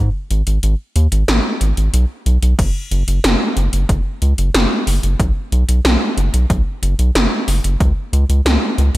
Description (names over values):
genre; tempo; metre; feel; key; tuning
synthwave; 92 BPM; 4/4; straight; unclear; A4 = 442 Hz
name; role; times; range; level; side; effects
round analog bass; bass; 0.0-9.0 s; F#1 to D#2; -14 LUFS; equal; none
80s electronic pad drums; drums; 0.3-9.0 s; crash cymbal, hi-hat, snare drum; -18 LUFS; equal; overdrive, gated reverb
electronic kick drum; drums; 2.6-7.9 s; none; -17 LUFS; equal; overdrive
room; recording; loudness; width
little or no reverb; none; -14 LUFS; side -17 dB against mid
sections
0.0-2.6 A section; 2.6-9.0 B section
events
none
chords
none